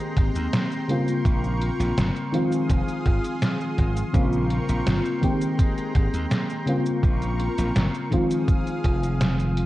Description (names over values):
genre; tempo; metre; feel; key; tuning
vaporwave; 83 BPM; 4/4; straight; Bb dorian; A4 = 442 Hz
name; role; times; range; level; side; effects
mellow FM electric piano; accompaniment; 0.0-9.7 s; Db3 to G4; -25 LUFS; left 1 dB; ensemble chorus, analog delay
lush unison pad; sustained chords; 0.0-9.7 s; Ab3 to Eb6; -33 LUFS; right 1 dB; chorus
slap bass; bass; 0.2-9.6 s; F1 to Eb2; -25 LUFS; equal; none
detuned 8-bit digital drum machine; drums; 0.2-9.7 s; cabasa, hi-hat, snare drum; -27 LUFS; equal; overdrive, gated reverb
electronic kick drum; drums; 0.2-9.0 s; none; -22 LUFS; equal; overdrive
room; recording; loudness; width
light reverb; cassette tape; -21 LUFS; side -16 dB against mid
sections
0.0-9.7 A section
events
kick drops out 9.2-9.7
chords
0.0 Abmaj9; 0.9 Bbm69; 2.3 Fm7; 4.1 Bbm69; 5.2 Abmaj9; 6.7 Bbm69; 8.1 Fm7